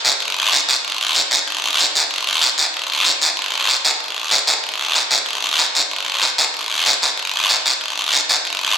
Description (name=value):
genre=latin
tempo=189 BPM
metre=4/4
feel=straight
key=none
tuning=none
part: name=guiro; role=percussion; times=0.0-8.8 s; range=none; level=-14 LUFS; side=equal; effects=none
room=moderate recital hall reverb, RT60 1.5 s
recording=recorded in a church or concert hall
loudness=-14 LUFS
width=side -8 dB against mid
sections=0.0-4.0 A section; 4.0-8.8 B section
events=none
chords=none